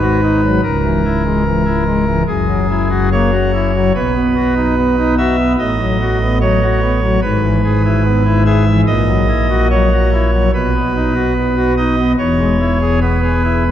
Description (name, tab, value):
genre	classical, chorale-style piece for pipe organ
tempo	73 BPM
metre	4/4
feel	straight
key	B major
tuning	A4 = 444 Hz
part	pipe organ, cornet	solo	0.0-13.7 s	C#1 to E5	-12 LUFS	equal	none
room	wet church reverb, RT60 3.4 s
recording	dark, warm production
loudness	-12 LUFS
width	side -10 dB against mid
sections	0.0-13.7 A section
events	none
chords	0.0 G#m7; 0.6 C#m; 2.3 F#9; 4.0 B; 5.6 B7/A; 7.2 E/G#; 8.9 F#7/A#; 10.5 B; 12.2 E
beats	| 0.64 1.45 2.27 3.12 | 3.95 4.77 5.59 6.41 | 7.22 8.05 8.88 9.71 | 10.53 11.36 12.18 13.02